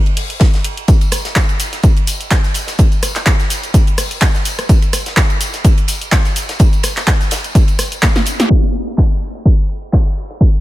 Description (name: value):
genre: house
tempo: 126 BPM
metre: 4/4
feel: swing 55% on 16ths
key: none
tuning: none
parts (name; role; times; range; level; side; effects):
- loose indie drum kit; drums; 0.1-10.5 s; hi-hat, ride cymbal, snare drum; -26 LUFS; right 2 dB; sidechain pumping on cymbals, high-pass filter on cymbals, low-pass filter on cymbals, sidechain pumping on hats, high-pass filter on hats, low-pass filter on hats, high-pass filter on snare, low-pass filter on snare, high-pass filter on room, low-pass filter on room
- punchy analog drum machine; drums; 0.1-10.6 s; cabasa, crash cymbal, handclaps, hi-hat, rim click, snare drum; -19 LUFS; equal; low-pass filter on hats, low-pass filter on perc, low-pass filter on snare, low-pass filter on cymbals, low-pass filter on room
- electronic kick drum; drums; 0.4-10.5 s; none; -12 LUFS; equal; none
- tambourine; percussion; 0.9-8.5 s; none; -29 LUFS; left 6 dB; none
room: small room ambience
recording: low-pass filter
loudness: -12 LUFS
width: side -16 dB against mid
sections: 0.0-8.5 A section; 8.5-10.6 B section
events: drum fill 8.0-8.5; band accent 8.4; filter sweep on drum 8.5-10.6; filter sweep 8.5-10.6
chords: none